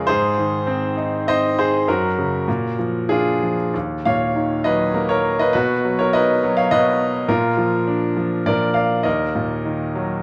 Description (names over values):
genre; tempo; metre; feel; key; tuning
classical, lyrical solo piano; 92-106 BPM; 3/4; rubato; Eb minor; A4 = 439 Hz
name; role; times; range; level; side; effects
bright grand piano; solo; 0.0-10.2 s; Eb2 to F5; -20 LUFS; equal; none
room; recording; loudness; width
moderate scoring stage reverb, RT60 1.5 s; dark, warm production; -20 LUFS; mono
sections
0.0-10.2 A section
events
none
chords
0.1 Ab; 1.9 Gb; 2.5 Bb; 3.7 Ebmadd9; 5.5 B; 7.3 Bb; 9.1 Ebm